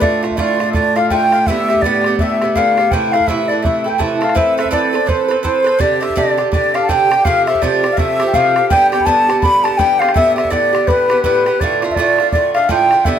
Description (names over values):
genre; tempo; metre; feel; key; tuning
celtic folk, Celtic hornpipe; 166 BPM; 4/4; swing 61% on 8ths; unclear; A4 = 440 Hz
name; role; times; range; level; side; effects
bright wooden flute; melody; 0.0-13.2 s; B4 to B5; -15 LUFS; equal; plate reverb
mellow accordion; second line; 0.0-13.2 s; B4 to B5; -20 LUFS; left 3 dB; none
Irish bouzouki; accompaniment; 0.0-13.2 s; G2 to B4; -18 LUFS; right 4 dB; none
warm cello; drone; 0.0-4.4 s; A2; -23 LUFS; right 1 dB; none
bodhran; percussion; 0.0-13.2 s; none; -21 LUFS; right 1 dB; none
room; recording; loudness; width
moderate studio reverb, RT60 0.6 s; none; -12 LUFS; side -9 dB against mid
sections
0.0-4.4 A section; 4.4-13.2 A section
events
none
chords
0.0 Dm; 1.5 Gadd9; 2.9 Am; 4.4 Amadd9; 5.8 Gsus4; 7.3 Fadd9; 8.7 G; 10.2 Gadd9; 11.6 Dm